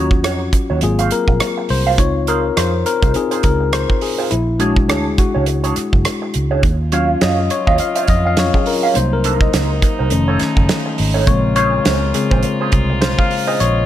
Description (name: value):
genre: lush 1970s-style soul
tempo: 103 BPM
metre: 4/4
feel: swing 58% on 16ths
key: Bb minor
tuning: A4 = 440 Hz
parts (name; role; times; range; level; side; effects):
- tine electric piano; accompaniment; 0.0-13.9 s; Db3 to F5; -18 LUFS; left 4 dB; none
- electric guitar through a small old amp; riff; 0.0-13.6 s; Db4 to F5; -22 LUFS; right 5 dB; wah
- vintage muted fingered electric bass; bass; 0.0-13.9 s; F1 to Gb2; -19 LUFS; right 1 dB; none
- damped 70s drum kit; drums; 0.1-13.8 s; hi-hat, kick drum, rim click, snare drum; -18 LUFS; right 1 dB; none
- muted French horn section; sustained chords; 6.6-13.9 s; Bb2 to F4; -26 LUFS; equal; none
room: light reverb, small room reverb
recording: none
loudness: -14 LUFS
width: side -12 dB against mid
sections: 0.0-13.9 A section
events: tine electric piano solo 0.0-13.9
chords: 0.0 Ebm7; 0.8 Ab13; 2.0 Dbmaj7; 4.3 Bb7alt; 6.6 Ebm9; 9.0 Cm7b5; 10.1 F7alt; 11.3 Bbm9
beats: 0.23 0.82 1.40 | 1.98 2.56 3.15 3.73 | 4.31 4.89 5.47 6.05 | 6.63 7.21 7.79 8.38 | 8.96 9.54 10.12 10.70 | 11.28 11.86 12.44 13.02 | 13.60